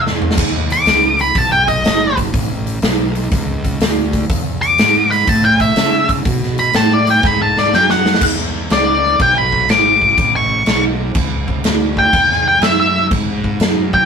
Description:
blues rock power trio and southern rock; 122 BPM; 4/4; swing 67% on 8ths; E mixolydian; A4 = 442 Hz
octave-fuzz lead guitar; melody; 0.0-14.1 s; D5 to D6; -12 LUFS; left 1 dB; distortion
fuzz fingered electric bass; bass; 0.0-14.1 s; F#1 to C#3; -19 LUFS; equal; overdrive
huge arena drum kit; drums; 0.1-14.0 s; crash cymbal, hi-hat, kick drum, snare drum, splash cymbal, toms; -16 LUFS; right 1 dB
moderate small room reverb, RT60 0.5 s; rough rehearsal-room recording, tube saturation; -12 LUFS; side -6 dB against mid
0.0-8.2 A section; 8.2-14.1 A section
drum fill 0.0-0.4, 7.2-8.2; lead electric guitar solo 0.0-8.2, 8.2-14.1
0.4 B; 2.3 A; 4.3 E; 5.3 A; 6.3 B5; 8.2 E; 10.2 A; 12.1 E

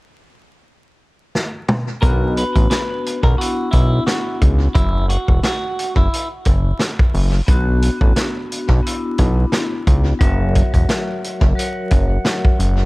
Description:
hip hop, boom-bap hip-hop; 88 BPM; 4/4; swing 56% on 16ths; B harmonic minor; A4 = 441 Hz
vintage drum kit; drums; 1.4-12.8 s; hi-hat, kick drum, snare drum, toms; -17 LUFS; equal
semi-hollow electric guitar; melody; 2.0-6.3 s; E4 to B4; -24 LUFS; right 1 dB; high-pass filter, low-pass filter, tape echo
vibraphone with medium hard mallets; accompaniment; 2.0-12.9 s; F#3 to F#5; -24 LUFS; left 2 dB; high-pass filter, low-pass filter, tape echo
fat analog bass; bass; 2.0-12.9 s; E1 to C#2; -16 LUFS; equal
studio reverb; echo-heavy mix, vinyl crackle; -15 LUFS; side -22 dB against mid
0.0-2.0 A section; 2.0-12.9 B section
drum fill 1.3-2.0
0.0 N.C.; 2.0 Bm; 4.8 Esus2; 7.5 Bm; 10.2 F#7

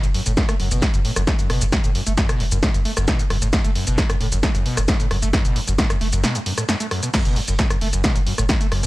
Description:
driving peak-time techno; 133 BPM; 4/4; straight; F# minor; A4 = 439 Hz
screaming distorted acid line; riff; 0.0-8.9 s; E2 to A3; -25 LUFS; equal; distortion, lush chorus, sidechain pumping, analog delay
saturated sub bass; bass; 0.0-8.9 s; F#1; -22 LUFS; equal; overdrive, sidechain pumping, low-pass filter
punchy analog drum machine; drums; 0.0-8.9 s; crash cymbal, hi-hat, rim click, shaker, snare drum; -23 LUFS; equal; sidechain pumping on hats, sidechain pumping on perc, sidechain pumping on cymbals
electronic kick drum; drums; 0.4-8.6 s; -20 LUFS; equal; overdrive
little or no reverb; dry, gritty hardware recording; -17 LUFS; side -19 dB against mid
0.0-7.1 A section; 7.1-8.9 A section
drop 0.0-7.1, 7.1-8.9; break 6.2-7.1
0.0 F#m

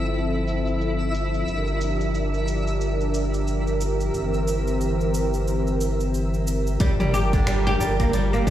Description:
organic downtempo; 90 BPM; 4/4; swing 59% on 16ths; G dorian; A4 = 437 Hz
warm analog pad; sustained chords; 0.0-8.5 s; E3 to Bb4; -26 LUFS; equal; chorus, sidechain pumping, shimmer reverb
warm sub bass; bass; 0.0-8.5 s; G1 to D2; -25 LUFS; equal
deep house drum kit; drums; 0.0-8.5 s; cabasa, finger snaps, hi-hat, toms; -34 LUFS; right 1 dB; low-pass filter on hats, low-pass filter on toms, low-pass filter on perc, low-pass filter on snare
twinkling granular texture; texture; 0.0-6.8 s; E4 to E5; -33 LUFS; left 1 dB; built-in reverb, shimmer reverb
oud; arpeggios; 6.8-8.5 s; D3 to G4; -23 LUFS; right 1 dB; tape echo, shimmer reverb
electronic kick drum; drums; 6.8-8.5 s; -23 LUFS; equal
moderate concert hall reverb, RT60 2.0 s, digital ambience; played on a big sound system in a bare room, large studio reverb; -21 LUFS; side -12 dB against mid
0.0-6.8 A section; 6.8-8.5 B section
0.0 Fmaj7/G; 1.5 Bb6/G; 4.1 C7/G; 6.8 Gm7

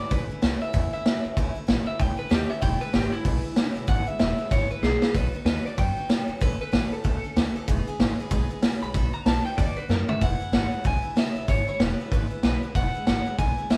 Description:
rockabilly; 190 BPM; 4/4; swing 60% on 8ths; E major; A4 = 440 Hz
electric guitar through a small old amp; melody; 0.0-13.8 s; E4 to B5; -33 LUFS; equal
picked steel-string acoustic guitar; accompaniment; 0.0-13.8 s; E2 to A4; -39 LUFS; equal
upright bass; bass; 0.1-13.8 s; E1 to A2; -32 LUFS; equal
vintage drum kit; drums; 0.1-13.8 s; hi-hat, kick drum, snare drum, toms; -27 LUFS; equal
light reverb; band playing live in one room; -25 LUFS; mono
0.0-10.2 A section; 10.2-13.8 B section
clean electric guitar solo 0.0-10.2; drum fill 4.8-5.1, 9.9-10.2
0.1 A; 2.6 E; 5.1 B; 6.4 A; 7.7 E; 8.9 B; 10.2 E

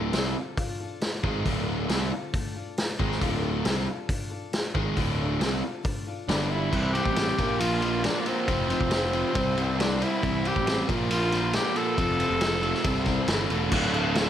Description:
classic rock; 137 BPM; 4/4; straight; D minor; A4 = 440 Hz
picked steel-string acoustic guitar; accompaniment; 0.0-14.3 s; Bb2 to D5; -37 LUFS; left 7 dB
biting overdriven guitar; riff; 0.0-14.3 s; D2 to F4; -32 LUFS; left 10 dB
biting overdriven guitar; riff; 0.0-14.3 s; D2 to C4; -32 LUFS; right 11 dB; spring reverb
fuzz picked electric bass; bass; 0.0-14.3 s; D1 to C2; -30 LUFS; equal; overdrive
vintage drum kit; drums; 0.1-14.3 s; crash cymbal, hi-hat, kick drum, ride cymbal, snare drum; -29 LUFS; equal
raspy tenor saxophone; melody; 6.3-13.5 s; Bb3 to A4; -29 LUFS; equal
tight distorted guitar; riff; 13.7-14.3 s; D2 to D3; -30 LUFS; right 1 dB; distortion
moderate large studio reverb, RT60 1.2 s, small room ambience; -24 LUFS; side -10 dB against mid
0.0-6.7 A section; 6.7-13.7 B section
0.0 Dm; 6.3 G5; 6.7 C; 7.4 Bb; 8.5 F; 9.4 C; 10.9 Bb; 12.0 F; 12.9 C; 13.3 A; 13.7 Dm

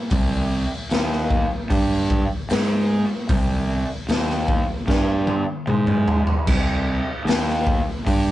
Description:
stoner and doom metal; 76 BPM; 4/4; straight; C minor; A4 = 440 Hz
fuzz fingered electric bass; bass; 0.1-8.3 s; C2 to Ab2; -21 LUFS; right 1 dB; overdrive
raw garage drum kit; drums; 0.1-8.2 s; crash cymbal, hi-hat, kick drum, snare drum, toms; -22 LUFS; equal
light reverb; rough rehearsal-room recording, nothing above 10.5 kHz; -19 LUFS; side -14 dB against mid
0.0-8.3 A section
drum fill 4.9-6.5

